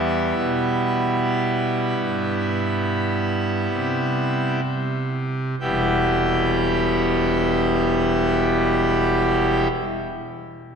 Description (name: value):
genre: classical, chorale-style piece for pipe organ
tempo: 31-39 BPM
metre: 4/4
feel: rubato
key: E minor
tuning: A4 = 441 Hz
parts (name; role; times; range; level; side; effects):
- pipe organ, full organ; solo; 0.0-9.7 s; E1 to G4; -19 LUFS; equal; none
room: wet church reverb, RT60 2.9 s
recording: none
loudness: -19 LUFS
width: side -6 dB against mid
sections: 0.0-5.6 A section; 5.6-10.8 B section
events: slowing down 0.0-5.6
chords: 0.0 Em